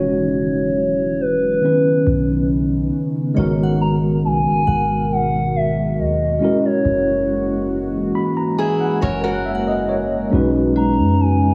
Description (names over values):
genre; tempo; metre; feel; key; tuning
R&B; 69 BPM; 4/4; straight; unclear; A4 = 440 Hz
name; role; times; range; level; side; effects
gliding portamento lead; melody; 0.0-11.5 s; B4 to A#5; -23 LUFS; equal; chorus, tape echo
mellow tine electric piano; accompaniment; 0.0-11.5 s; D#3 to B5; -21 LUFS; equal; none
deep dark ambient pad; sustained chords; 0.5-11.5 s; B2 to A#4; -28 LUFS; equal; chorus, built-in reverb
warm 808-style bass; bass; 0.0-11.5 s; E1 to F#2; -26 LUFS; equal; none
glassy synth bell; texture; 3.4-11.5 s; F#4 to F#5; -35 LUFS; equal; chorus, tape echo
fingerpicked steel-string acoustic guitar; arpeggios; 8.6-10.3 s; E4 to C#5; -26 LUFS; equal; tape echo
room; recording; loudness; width
moderate scoring stage reverb, RT60 1.9 s; small room ambience; -18 LUFS; mono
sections
0.0-3.4 A section; 3.4-11.5 B section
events
tine electric piano fill 7.7-10.3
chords
0.0 E69; 1.6 Badd9; 3.4 G#m9; 6.4 F#9; 10.3 B69